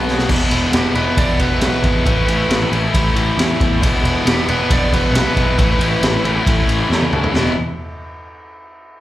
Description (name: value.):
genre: classic rock.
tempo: 136 BPM.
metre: 4/4.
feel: straight.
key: E major.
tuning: A4 = 442 Hz.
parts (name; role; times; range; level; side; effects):
distorted electric guitar; riff; 0.0-7.5 s; E2 to E4; -26 LUFS; right 10 dB; distortion, slapback echo.
tight distorted guitar; riff; 0.0-7.5 s; E2 to E4; -19 LUFS; left 4 dB; distortion, slapback echo.
growling picked electric bass; bass; 0.0-7.5 s; E1 to E2; -20 LUFS; equal; overdrive.
raw garage drum kit; drums; 0.1-7.5 s; crash cymbal, kick drum, ride cymbal, snare drum, toms; -18 LUFS; equal; none.
smooth overdriven lead guitar; melody; 0.7-6.4 s; G4 to D5; -23 LUFS; right 3 dB; slapback echo.
room: little or no reverb.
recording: live gig heard through the venue's PA, club reverb.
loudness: -13 LUFS.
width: side -14 dB against mid.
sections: 0.3-7.3 A section; 7.3-9.0 B section.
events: drum fill 0.1, 6.9-7.3; lead electric guitar solo 0.3-7.3.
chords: 0.3 E; 2.1 A; 3.8 E; 5.6 A; 7.3 E.